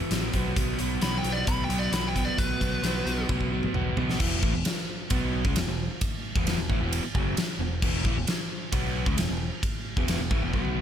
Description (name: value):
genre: classic rock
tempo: 132 BPM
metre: 4/4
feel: straight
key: unclear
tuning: A4 = 444 Hz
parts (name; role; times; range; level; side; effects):
- crunchy overdriven guitar; riff; 0.0-10.8 s; E2 to B3; -30 LUFS; equal; none
- growling picked electric bass; bass; 0.1-10.8 s; E1 to C#2; -30 LUFS; equal; overdrive
- big rock drum kit; drums; 0.1-10.8 s; crash cymbal, hi-hat, kick drum, ride cymbal, snare drum, toms; -28 LUFS; equal; none
- biting lead guitar; melody; 1.0-3.3 s; B4 to B5; -32 LUFS; left 1 dB; overdrive
room: little or no reverb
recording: none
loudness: -25 LUFS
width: side -9 dB against mid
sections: 0.0-4.2 A section; 4.2-10.8 B section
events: lead electric guitar solo 0.0-4.2; drum fill 3.3-4.2, 10.5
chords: 0.3 B5; 4.2 E5